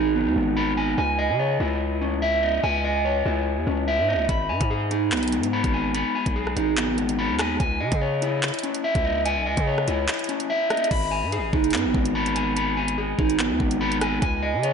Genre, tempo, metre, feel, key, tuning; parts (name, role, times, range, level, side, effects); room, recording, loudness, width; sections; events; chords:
hip hop, drill; 145 BPM; 4/4; half-time; G# minor; A4 = 440 Hz
electric guitar at the edge of break-up; arpeggios; 0.0-14.7 s; G#3 to B5; -22 LUFS; equal; spring reverb, diffuse ambient delay
distorted 808-style bass; bass; 0.0-14.7 s; F#1 to C#3; -28 LUFS; equal; distortion
drill drum kit; drums; 4.3-14.7 s; crash cymbal, handclaps, hi-hat, kick drum, rim click; -27 LUFS; equal
wet plate reverb, RT60 1.7 s; dreamy mix soaked in reverb, nothing above 10.6 kHz; -21 LUFS; side -6 dB against mid
0.0-10.9 A section; 10.9-14.7 B section
kick muted 10.1-10.9
0.0 G#m; 1.0 C#madd9; 4.3 G#m; 7.6 C#madd9; 10.9 G#m; 14.2 C#sus2